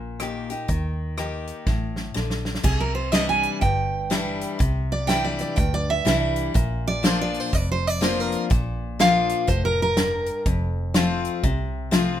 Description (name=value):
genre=honky-tonk and classic country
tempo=123 BPM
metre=4/4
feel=swing 61% on 8ths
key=unclear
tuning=A4 = 440 Hz
part: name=picked steel-string acoustic guitar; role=accompaniment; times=0.0-12.2 s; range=F2 to G4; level=-26 LUFS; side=left 4 dB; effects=none
part: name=vintage muted fingered electric bass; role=bass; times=0.0-12.2 s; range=F1 to Eb2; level=-27 LUFS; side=equal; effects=none
part: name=natural country drum kit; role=drums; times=0.2-12.1 s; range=crash cymbal, hi-hat, kick drum, rim click, snare drum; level=-24 LUFS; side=equal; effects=none
part: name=picked steel-string acoustic guitar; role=melody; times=2.6-10.4 s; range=Ab4 to Ab5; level=-24 LUFS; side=right 2 dB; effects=none
room=light reverb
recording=minimal, uncompressed stereo recording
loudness=-21 LUFS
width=side -11 dB against mid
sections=0.0-2.7 A section; 2.7-12.2 B section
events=drum fill 1.7-2.7; steel-string acoustic guitar solo 2.7-12.2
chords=0.0 Eb; 2.7 Cadd9; 6.6 Bb; 10.5 F